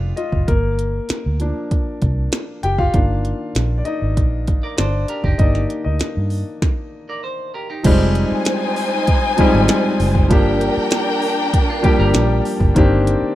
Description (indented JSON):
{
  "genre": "lush 1970s-style soul",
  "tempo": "98 BPM",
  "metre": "4/4",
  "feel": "straight",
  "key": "F dorian",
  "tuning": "A4 = 441 Hz",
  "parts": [
    { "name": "warm concert grand piano", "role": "accompaniment", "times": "0.0-13.3 s", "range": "Eb3 to G5", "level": "-20 LUFS", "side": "left 1 dB", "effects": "none" },
    { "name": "clean electric guitar", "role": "riff", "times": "0.0-0.4, 4.6-12.7 s", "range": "D4 to D5", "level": "-29 LUFS", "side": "right 2 dB", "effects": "none" },
    { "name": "vintage muted fingered electric bass", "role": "bass", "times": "0.0-13.2 s", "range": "F1 to G2", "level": "-19 LUFS", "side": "equal", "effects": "none" },
    { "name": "glitchy drum kit", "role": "drums", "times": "0.2-13.2 s", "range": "crash cymbal, hi-hat, kick drum, snare drum", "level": "-18 LUFS", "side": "equal", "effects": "none" },
    { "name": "warm symphonic string section", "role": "second line", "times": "7.9-12.7 s", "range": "D4 to Ab5", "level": "-21 LUFS", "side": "left 1 dB", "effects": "none" }
  ],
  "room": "little or no reverb",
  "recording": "rough home demo mix",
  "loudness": "-15 LUFS",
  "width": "side -14 dB against mid",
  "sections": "0.0-7.9 A section; 7.9-13.3 B section",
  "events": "grand piano solo 0.0-7.9; stop 6.6-7.9",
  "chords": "0.5 Gm7; 2.9 Ebmaj9; 7.9 Fm9; 10.3 Gm7; 12.8 Cm9"
}